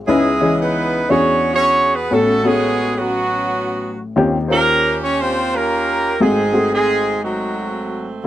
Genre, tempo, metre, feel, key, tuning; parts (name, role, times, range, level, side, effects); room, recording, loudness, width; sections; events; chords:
gospel; 118 BPM; 4/4; swing 65% on 8ths; A4 = 440 Hz
dark baby grand piano; accompaniment; 0.0-8.3 s; G#1 to D#5; -19 LUFS; left 2 dB
warm horn section; melody; 0.1-8.2 s; F#3 to C#5; -16 LUFS; right 2 dB
light reverb; dry, close 1970s-style studio recording; -15 LUFS; side -13 dB against mid
0.0-8.3 A section
0.1 C#m9; 1.1 E13; 2.1 A69; 4.2 D#13; 6.2 G#7b9